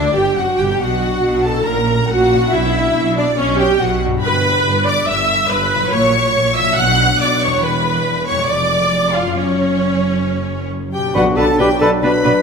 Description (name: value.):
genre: classical, dramatic, fast romantic movement for symphony orchestra.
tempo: 140 BPM.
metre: 4/4.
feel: straight.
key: B minor from 4.2 s.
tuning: A4 = 441 Hz.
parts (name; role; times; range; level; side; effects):
warm symphonic violin section; melody; 0.0-12.3 s; B4 to F#6; -26 LUFS; left 4 dB; none.
clear symphonic violin section; second line; 0.0-12.4 s; C#5 to F#6; -21 LUFS; left 2 dB; none.
rich symphonic viola section; accompaniment; 0.0-12.3 s; C#4 to F#5; -17 LUFS; right 1 dB; none.
concert harp; arpeggios; 0.0-12.4 s; E2 to Ab4; -25 LUFS; left 9 dB; none.
rich symphonic cello section; bass; 0.0-12.3 s; D2 to B2; -23 LUFS; right 3 dB; none.
rich symphonic double bass section; bass; 0.0-12.3 s; E1 to D2; -23 LUFS; right 4 dB; none.
warm clarinet; second line; 10.9-12.4 s; F#4 to B4; -17 LUFS; left 1 dB; none.
warm oboe; second line; 11.1-12.3 s; B4; -24 LUFS; right 1 dB; none.
mellow bassoon; accompaniment; 11.1-12.3 s; D4; -21 LUFS; equal; none.
warm French horn section; sustained chords; 11.1-12.4 s; F#3 to D4; -20 LUFS; left 4 dB; none.
mellow flute section; second line; 11.2-12.3 s; B5; -26 LUFS; right 3 dB; none.
timpani; percussion; 11.2-11.8 s; B2; -22 LUFS; right 2 dB; none.
room: moderate scoring stage reverb, RT60 1.9 s.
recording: none.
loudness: -13 LUFS.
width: side -5 dB against mid.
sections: 0.0-11.1 A section; 11.1-12.4 B section.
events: none.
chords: 0.0 D; 0.8 Bm; 1.7 F#7/A#; 2.5 Bm; 4.2 Em/G; 5.9 F#7/A#; 6.8 Bm; 7.6 Em; 8.5 Fdim7; 9.4 F#; 11.1 Bm.